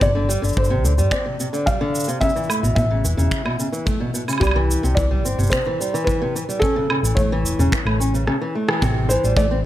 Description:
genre	folktronica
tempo	109 BPM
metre	4/4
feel	straight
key	unclear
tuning	A4 = 435 Hz
part	felt-muted upright piano	melody	0.0-9.7 s	G4 to F5	-24 LUFS	equal	ping-pong delay
part	fingerpicked steel-string acoustic guitar	arpeggios	0.0-9.6 s	B2 to C#4	-23 LUFS	equal	ping-pong delay
part	hollow-body short-scale fingered electric bass	bass	0.0-9.6 s	E1 to G2	-20 LUFS	equal	none
part	electronic shaker, finger snaps, woodblock and rim click	drums	0.0-9.5 s	none	-26 LUFS	right 1 dB	none
part	kick drum	drums	0.0-9.5 s	none	-25 LUFS	equal	none
room	little or no reverb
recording	none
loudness	-17 LUFS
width	side -13 dB against mid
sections	0.0-8.8 A section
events	drum fill 8.3-8.8; band accent 8.7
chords	0.0 Gsus4; 2.2 Aadd9; 4.4 C; 6.6 A; 8.8 Am7

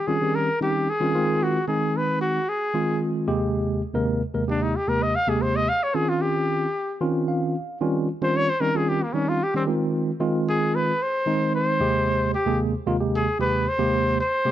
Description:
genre	jazz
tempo	113 BPM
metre	4/4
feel	straight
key	Ab major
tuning	A4 = 444 Hz
part	clear trumpet	melody	0.0-14.5 s	Bb3 to F5	-24 LUFS	left 1 dB	slapback echo
part	tine electric piano	accompaniment	0.1-14.5 s	Eb2 to F5	-23 LUFS	right 1 dB	fast stereo tremolo
room	studio ambience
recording	dry, close 1970s-style studio recording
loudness	-21 LUFS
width	side -12 dB against mid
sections	0.0-14.5 A section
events	trumpet solo 0.0-14.5; tine electric piano fill 7.0-7.8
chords	0.0 Eb13; 1.1 Fm7; 3.3 Abmaj9/Eb; 5.7 Dbmaj9; 7.8 Eb13; 9.7 Fm7; 11.8 Abmaj9/Eb

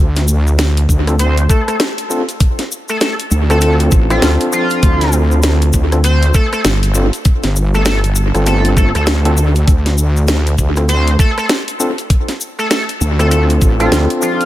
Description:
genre	glitch hop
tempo	99 BPM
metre	4/4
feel	swing 61% on 16ths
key	D minor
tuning	A4 = 439 Hz
part	wobble bass	bass	0.0-14.1 s	G1 to D2	-12 LUFS	equal	chorus
part	drum and bass drum kit	drums	0.2-14.5 s	hi-hat, rim click, snare drum	-19 LUFS	equal	analog delay
part	cabasa	percussion	0.2-14.5 s	none	-25 LUFS	left 4 dB	none
part	electronic kick drum	drums	0.9-13.8 s	none	-12 LUFS	equal	none
part	overdriven tine electric piano	stabs	1.1-14.5 s	C4 to A4	-19 LUFS	left 1 dB	fast tremolo, sidechain pumping, analog delay
part	sync lead	melody	1.2-14.5 s	F4 to C5	-19 LUFS	equal	lush chorus, analog delay
room	digital ambience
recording	echo-heavy mix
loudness	-11 LUFS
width	side -14 dB against mid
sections	0.0-14.5 A section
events	none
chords	0.0 Dm7

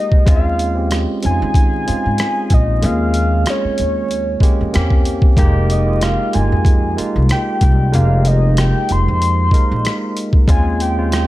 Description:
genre	R&B, neo-soul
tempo	94 BPM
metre	4/4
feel	swing 54% on 16ths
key	F minor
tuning	A4 = 436 Hz
part	soft octave-layered synth lead	melody	0.0-11.3 s	Db5 to C6	-21 LUFS	left 1 dB	chorus
part	barky tine electric piano	accompaniment	0.0-11.3 s	Ab3 to Bb4	-21 LUFS	right 2 dB	auto-pan
part	boom bap sampler-style drum kit	drums	0.1-11.3 s	hi-hat, kick drum, rim click	-15 LUFS	equal	none
part	upright bass	bass	0.3-11.3 s	F1 to Eb3	-16 LUFS	equal	none
room	digital ambience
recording	vinyl crackle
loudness	-13 LUFS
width	side -16 dB against mid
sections	0.0-11.3 A section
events	none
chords	0.3 Eb9sus4; 4.7 Edim7; 5.4 Fm9; 10.5 Eb9sus4

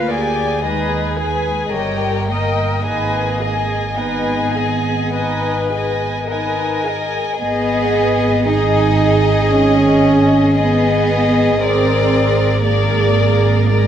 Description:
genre	classical, slow romantic movement for string orchestra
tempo	52-58 BPM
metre	4/4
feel	rubato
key	G# minor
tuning	A4 = 439 Hz
part	warm chamber violin section	melody	0.0-13.9 s	F4 to D#5	-22 LUFS	left 6 dB	none
part	warm chamber violin section	second line	0.0-13.9 s	G#4 to Ab5	-21 LUFS	left 1 dB	none
part	dark chamber viola section	accompaniment	0.0-13.9 s	D#4 to D#5	-22 LUFS	right 2 dB	none
part	dark chamber double bass section	bass	0.0-13.9 s	G1 to D#2	-20 LUFS	right 2 dB	none
part	warm chamber cello section	bass	0.0-13.9 s	G3 to D#4	-19 LUFS	right 2 dB	none
room	moderate scoring stage reverb, RT60 1.6 s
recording	worn, warbling old tape, cassette tape, warbly pitch drift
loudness	-14 LUFS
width	side -9 dB against mid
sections	0.0-7.4 A section; 7.4-13.9 A section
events	none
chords	0.0 Ddim7; 0.6 G#m/D#; 1.7 D#7/G; 2.9 G#m; 11.6 A#7/G#

